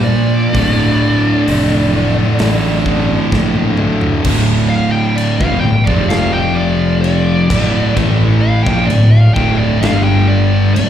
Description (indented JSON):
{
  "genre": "stoner and doom metal",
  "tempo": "65 BPM",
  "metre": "4/4",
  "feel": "straight",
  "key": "D minor",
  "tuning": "A4 = 440 Hz",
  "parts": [
    { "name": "fuzz lead guitar", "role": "melody", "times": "0.0-10.9 s", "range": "D5 to G5", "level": "-20 LUFS", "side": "equal", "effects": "wah, distortion, slapback echo, digital delay" },
    { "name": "distorted electric guitar", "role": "riff", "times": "0.0-10.9 s", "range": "D2 to Bb3", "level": "-18 LUFS", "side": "equal", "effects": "distortion, slapback echo" },
    { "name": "fuzz guitar", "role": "riff", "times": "0.0-10.9 s", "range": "D2 to Bb3", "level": "-19 LUFS", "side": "right 7 dB", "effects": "distortion, slapback echo" },
    { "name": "thick fuzz guitar", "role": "riff", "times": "0.0-10.9 s", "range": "D2 to Bb3", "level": "-18 LUFS", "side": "left 5 dB", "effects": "distortion, slapback echo" },
    { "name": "fuzz fingered electric bass", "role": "bass", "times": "0.1-10.9 s", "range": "D1 to Bb2", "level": "-16 LUFS", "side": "equal", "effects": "overdrive" },
    { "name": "big rock drum kit", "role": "drums", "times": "0.5-10.9 s", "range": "crash cymbal, hi-hat, kick drum, snare drum, toms", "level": "-21 LUFS", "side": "equal", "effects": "none" }
  ],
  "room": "little or no reverb",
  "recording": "live gig heard through the venue's PA, recital hall reverb",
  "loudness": "-11 LUFS",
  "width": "side -10 dB against mid",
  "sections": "0.0-4.2 A section; 4.2-10.9 B section",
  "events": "drum fill 3.3-4.2; lead electric guitar solo 4.2-10.9",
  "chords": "0.0 Bb; 0.5 Dm; 4.2 D5; 5.9 F5; 7.5 Dm; 9.8 G5",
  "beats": "| 0.54 1.47 2.40 3.32 | 4.25 5.18 6.11 7.04 | 7.96 8.90 9.83 10.76"
}